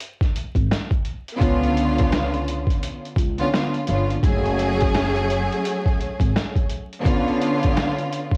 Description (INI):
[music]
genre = hip hop, boom-bap hip-hop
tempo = 85 BPM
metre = 4/4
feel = swing 62% on 16ths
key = F# harmonic minor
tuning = A4 = 440 Hz
[part]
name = trip hop sampler-style drum kit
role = drums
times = 0.0-8.4 s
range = hi-hat, kick drum, rim click, snare drum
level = -25 LUFS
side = equal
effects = cassette tape
[part]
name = upright bass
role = bass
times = 0.6-6.3 s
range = F#1 to C#2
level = -27 LUFS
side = equal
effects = none
[part]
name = rich studio string section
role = accompaniment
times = 1.4-8.4 s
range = D3 to G#4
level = -25 LUFS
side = equal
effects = cassette tape
[sound]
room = little or no reverb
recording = home recording on cassette, vinyl crackle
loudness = -22 LUFS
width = mono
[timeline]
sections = 0.0-8.4 A section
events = break 0.0-1.4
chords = 0.0 N.C.; 1.4 C#7b9; 4.2 F#madd9; 7.1 C#7b9